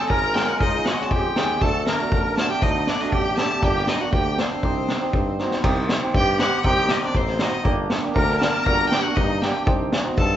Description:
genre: klezmer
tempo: 119 BPM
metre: 2/4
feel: straight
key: C dorian sharp4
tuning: A4 = 440 Hz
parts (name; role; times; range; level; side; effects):
- clear violin; melody; 0.0-10.4 s; C5 to Bb5; -25 LUFS; left 1 dB; none
- musette accordion; second line; 0.0-10.4 s; C4 to Bb4; -26 LUFS; equal; none
- hammered dulcimer; accompaniment; 0.0-10.2 s; Ab3 to Bb4; -26 LUFS; right 2 dB; none
- clear tuba; bass; 0.1-10.4 s; G1 to G2; -28 LUFS; equal; none
- street-band drum kit; drums; 0.1-10.3 s; crash cymbal, kick drum, snare drum; -23 LUFS; equal; none
room: moderate large studio reverb, RT60 1.2 s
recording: band playing live in one room, nothing above 7.7 kHz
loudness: -19 LUFS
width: side -11 dB against mid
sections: 0.0-5.6 A section; 5.6-10.4 B section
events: drum fill 5.4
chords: 0.0 Db; 1.6 D; 3.6 Gm; 4.6 Cm; 7.7 Gm; 9.7 Cm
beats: 0.10 | 0.60 1.10 | 1.61 2.11 | 2.62 3.12 | 3.63 4.13 | 4.63 5.14 | 5.64 6.14 | 6.65 7.15 | 7.65 8.16 | 8.66 9.17 | 9.67 10.18

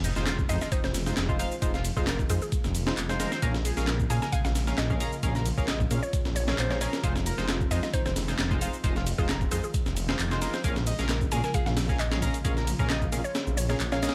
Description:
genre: breakbeat, breaks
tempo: 133 BPM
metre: 4/4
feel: swing 54% on 16ths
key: F minor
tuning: A4 = 440 Hz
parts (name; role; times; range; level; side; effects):
- phased analog pad; sustained chords; 0.1-14.1 s; Db3 to F4; -41 LUFS; equal; none
- overdriven synth lead; riff; 0.0-14.1 s; Eb4 to Bb5; -40 LUFS; equal; phaser, dub echo
- detuned saw bass; bass; 0.0-14.1 s; F1 to Bb2; -32 LUFS; equal; tube saturation
- breakbeat sampler-style drum kit; drums; 0.0-14.1 s; hi-hat, kick drum, snare drum; -32 LUFS; equal; studio reverb
- house drum kit; drums; 0.0-14.1 s; handclaps, ride cymbal, shaker; -39 LUFS; equal; studio reverb
- impact; sound effects; 0.0-1.6 s; none; -40 LUFS; equal; none
- band-passed chord stab; stabs; 0.2-14.1 s; Ab3 to F5; -38 LUFS; equal; chorus, dub echo
- mallet-like synth pluck; melody; 0.5-14.1 s; Ab4 to Ab5; -39 LUFS; equal; chorus, AM radio sound, dub echo
room: little or no reverb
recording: vinyl crackle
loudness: -28 LUFS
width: mono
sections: 0.0-14.1 A section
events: impact 0.0-1.6; kick drops out 13.3-14.1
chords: 0.0 Fm7; 3.4 Bbm7; 7.0 Fm7; 10.6 Bbm7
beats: 0.27 0.72 1.17 | 1.62 2.07 2.52 2.97 | 3.42 3.88 4.33 4.78 | 5.23 5.68 6.13 6.58 | 7.03 7.49 7.94 8.39 | 8.84 9.29 9.74 10.19 | 10.64 11.09 11.54 12.00 | 12.45 12.90 13.35 13.80

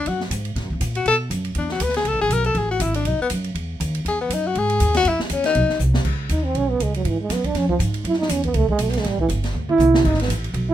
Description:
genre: jazz, small-group swing and bop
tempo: 240 BPM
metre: 4/4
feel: swing 57% on 8ths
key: E major, C# minor from 6.1 s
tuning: A4 = 441 Hz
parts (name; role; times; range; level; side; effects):
- breathy tenor saxophone; melody; 0.0-5.8 s; G#3 to B4; -20 LUFS; left 4 dB; none
- upright bass; bass; 0.0-10.7 s; G1 to B2; -22 LUFS; equal; none
- open jazz drum kit; drums; 0.1-10.6 s; crash cymbal, hi-hat, kick drum, ride cymbal, snare drum, toms; -28 LUFS; equal; none
- breathy trombone; second line; 6.3-10.7 s; E3 to E4; -20 LUFS; right 4 dB; none
room: light reverb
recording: minimal, uncompressed stereo recording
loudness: -18 LUFS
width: side -11 dB against mid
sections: 0.0-6.1 A section; 6.1-10.7 A section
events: tenor saxophone solo 0.0-6.1; drum fill 5.8, 9.5-10.0; trombone solo 6.1-10.7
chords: 0.1 F#sus2; 1.1 B5; 1.6 D69; 2.1 Amaj7sus2; 3.1 B; 4.1 Emaj7; 5.1 E69; 5.6 B; 6.1 C#sus2; 7.1 Eadd9; 7.6 Fm; 8.1 F#5; 9.1 Emadd11 (rootless); 9.5 Dsus2; 10.0 E (rootless)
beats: | 0.07 0.31 0.56 0.81 | 1.06 1.31 1.56 1.81 | 2.06 2.31 2.56 2.81 | 3.06 3.31 3.56 3.81 | 4.06 4.31 4.56 4.80 | 5.05 5.30 5.55 5.80 | 6.05 6.30 6.55 6.80 | 7.05 7.30 7.55 7.80 | 8.05 8.30 8.55 8.80 | 9.05 9.30 9.55 9.80 | 10.05 10.30 10.55

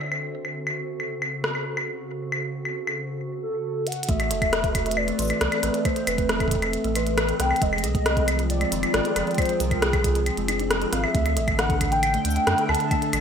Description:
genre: IDM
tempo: 136 BPM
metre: 4/4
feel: straight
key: unclear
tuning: A4 = 439 Hz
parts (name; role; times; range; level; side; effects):
- hollow soft pad; sustained chords; 0.0-13.2 s; C#3 to G5; -30 LUFS; left 2 dB; chorus
- glitchy drum kit; drums; 0.0-13.2 s; cabasa, claves, hi-hat, rim click; -26 LUFS; equal; gated reverb
- bubbling stepped-filter texture; texture; 0.0-3.2 s; C4 to C5; -44 LUFS; right 1 dB; chorus, built-in reverb
- warbly nostalgic lead; melody; 3.4-13.2 s; Ab4 to A5; -26 LUFS; left 1 dB; analog chorus, ping-pong delay
- buzzing kalimba; arpeggios; 4.1-13.2 s; D#3 to A4; -30 LUFS; right 6 dB; digital delay
- warm sub bass; bass; 4.1-13.2 s; E1 to F#2; -27 LUFS; equal; none
- electronic kick drum; drums; 4.1-13.0 s; none; -26 LUFS; equal; none
room: moderate plate reverb, RT60 1.8 s, digital ambience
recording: bright 1980s-style digital production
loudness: -22 LUFS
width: side -7 dB against mid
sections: 0.0-4.1 A section; 4.1-13.2 B section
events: drum fill 3.9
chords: 0.0 Dadd9; 0.6 F#m; 4.1 Amadd9; 7.6 Fmadd9; 11.1 Dsus2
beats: 0.12 | 0.56 1.00 1.44 1.88 | 2.32 2.76 3.21 3.65 | 4.09 4.53 4.97 5.41 | 5.85 6.29 6.73 7.17 | 7.62 8.06 8.50 8.94 | 9.38 9.82 10.26 10.71 | 11.15 11.59 12.03 12.47 | 12.91

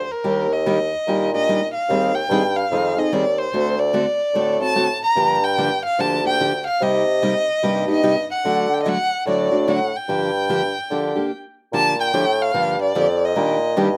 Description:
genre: acoustic string swing (jazz manouche)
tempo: 146 BPM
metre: 4/4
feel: swing 62% on 8ths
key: G minor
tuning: A4 = 440 Hz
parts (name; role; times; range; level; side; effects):
- warm violin; melody; 0.0-14.0 s; Bb4 to Bb5; -23 LUFS; equal; slapback echo
- mellow bassoon; bass; 0.0-14.0 s; D2 to D3; -24 LUFS; equal; none
- picked steel-string acoustic guitar; accompaniment; 0.2-13.9 s; C3 to A4; -25 LUFS; equal; slapback echo
room: little or no reverb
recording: recorded outdoors, with no room sound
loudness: -20 LUFS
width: mono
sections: 0.0-11.7 A section; 11.7-14.0 B section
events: stop 11.3-11.7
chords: 0.2 Ebmaj7; 1.9 Abmaj7/Eb; 3.5 D7; 5.2 Gm7; 6.8 Cm7; 8.4 D; 10.1 Gm7; 11.7 Bb6; 13.4 Ebmaj7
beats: | 0.25 0.66 1.07 1.48 | 1.89 2.30 2.71 3.12 | 3.53 3.94 4.35 4.76 | 5.17 5.58 5.99 6.39 | 6.80 7.21 7.62 8.03 | 8.44 8.85 9.26 9.67 | 10.08 10.49 10.90 11.31 | 11.72 12.13 12.53 12.94 | 13.35 13.76

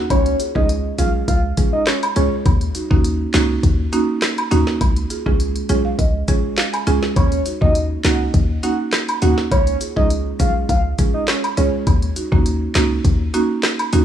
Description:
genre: dancehall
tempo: 102 BPM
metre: 4/4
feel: straight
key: Eb minor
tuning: A4 = 441 Hz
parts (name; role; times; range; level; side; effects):
- soft octave-layered synth lead; melody; 0.1-2.3, 7.2-11.7 s; Db5 to Gb5; -22 LUFS; right 1 dB; chorus, phaser, tape echo
- short 808-style bass; bass; 0.1-14.0 s; Cb2 to Eb2; -20 LUFS; equal; none
- island pop drum kit; drums; 0.1-14.0 s; handclaps, hi-hat, kick drum, rim click, snare drum; -19 LUFS; equal; none
- woodblock and cabasa; percussion; 0.1-14.0 s; none; -27 LUFS; right 1 dB; none
- buzzing marimba with medium mallets; accompaniment; 0.4-14.0 s; Ab3 to Ab5; -21 LUFS; right 3 dB; sidechain pumping
room: little or no reverb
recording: dry, gritty hardware recording, cassette tape, studio reverb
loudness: -15 LUFS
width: side -10 dB against mid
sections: 0.0-14.0 A section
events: marimba fill 5.4-7.2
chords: 0.1 Db; 2.5 Ebm7; 4.8 Db; 7.2 Ebm7; 9.5 Db; 11.9 Ebm7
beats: | 0.10 0.69 1.28 1.87 | 2.46 3.04 3.63 4.22 | 4.81 5.40 5.99 6.58 | 7.16 7.75 8.34 8.93 | 9.52 10.10 10.69 11.28 | 11.87 12.46 13.04 13.63

